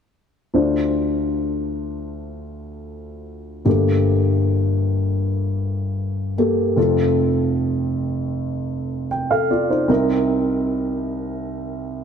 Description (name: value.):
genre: pop.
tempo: 77 BPM.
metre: 4/4.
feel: straight.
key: unclear.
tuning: A4 = 440 Hz.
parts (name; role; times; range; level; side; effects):
dark baby grand piano; accompaniment; 0.5-12.0 s; F1 to G5; -19 LUFS; equal; none.
room: moderate lush hall reverb, RT60 2.5 s.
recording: none.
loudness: -18 LUFS.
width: side -7 dB against mid.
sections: 0.5-12.0 A section.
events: none.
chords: 0.5 Dm7; 3.7 Gmadd9; 6.8 F; 9.9 Cm7.